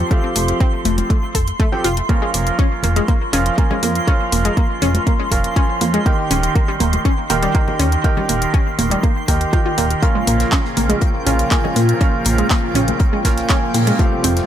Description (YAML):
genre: progressive house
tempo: 121 BPM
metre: 4/4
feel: straight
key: Bb dorian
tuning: A4 = 438 Hz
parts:
  - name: felt-muted upright piano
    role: stabs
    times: 0.0-14.5 s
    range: Bb2 to Ab5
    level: -22 LUFS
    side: right 3 dB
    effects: sidechain pumping, ping-pong delay
  - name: plucky analog bass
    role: bass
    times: 0.0-14.4 s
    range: Eb1 to Bb2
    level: -19 LUFS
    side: equal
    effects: sidechain pumping
  - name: twinkling granular texture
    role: texture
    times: 0.0-14.5 s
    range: G5 to C6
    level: -27 LUFS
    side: right 1 dB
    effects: built-in reverb, sidechain pumping
  - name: analog pluck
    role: arpeggios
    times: 0.1-14.3 s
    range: Bb2 to A4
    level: -22 LUFS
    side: equal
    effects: chorus, sidechain pumping, ping-pong delay
  - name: electronic kick drum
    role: drums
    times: 0.1-14.1 s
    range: none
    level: -17 LUFS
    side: equal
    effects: none
  - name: pop drum kit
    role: drums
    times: 0.1-14.5 s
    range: handclaps, hi-hat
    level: -23 LUFS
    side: left 1 dB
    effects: overdrive
  - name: congas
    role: percussion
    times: 0.8-13.0 s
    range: none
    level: -26 LUFS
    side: right 1 dB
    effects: sidechain pumping on perc
  - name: warm analog pad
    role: sustained chords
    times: 10.0-14.5 s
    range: C3 to F4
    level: -24 LUFS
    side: left 2 dB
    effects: chorus, sidechain pumping
  - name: damped 70s drum kit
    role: drums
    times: 10.0-14.5 s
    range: hi-hat, snare drum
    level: -33 LUFS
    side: left 6 dB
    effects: none
room: small room ambience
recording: none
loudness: -14 LUFS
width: side -10 dB against mid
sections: 0.0-14.5 A section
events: none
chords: 0.0 Fadd9; 2.1 Bbm/F; 6.1 Eb; 10.0 Bbm